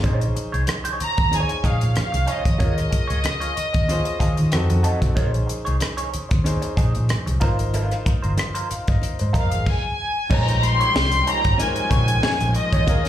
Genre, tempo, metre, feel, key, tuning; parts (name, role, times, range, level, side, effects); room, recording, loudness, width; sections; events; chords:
lush 1970s-style soul; 94 BPM; 4/4; swing 54% on 16ths; Bb dorian; A4 = 440 Hz
clear grand piano; accompaniment; 0.0-13.1 s; Ab3 to F5; -30 LUFS; left 2 dB; slapback echo
electric guitar through a small old amp; riff; 0.0-13.1 s; Eb4 to Eb5; -30 LUFS; right 3 dB; wah, slapback echo
vintage muted fingered electric bass; bass; 0.0-13.1 s; G1 to Eb3; -21 LUFS; equal
tight funk drum kit; drums; 0.0-13.1 s; crash cymbal, hi-hat, kick drum, rim click, snare drum; -24 LUFS; equal
congas; percussion; 0.0-13.0 s; -31 LUFS; right 2 dB; slapback echo
warm studio violin section; melody; 1.0-4.9, 9.4-13.1 s; Eb5 to C6; -23 LUFS; left 1 dB; slapback echo
dark studio string section; second line; 10.3-13.1 s; G3 to Ab5; -32 LUFS; left 3 dB; slapback echo
tonewheel organ; sustained chords; 10.3-13.1 s; Eb3 to C5; -34 LUFS; equal; slow rotary speaker
light reverb; live gig heard through the venue's PA, club reverb; -18 LUFS; side -11 dB against mid
0.0-10.3 A section; 10.3-13.1 B section
0.0 Bbm11; 2.6 Eb9sus4; 4.5 F7b9; 5.2 Bbm11; 7.4 Ab69; 10.3 Bbm11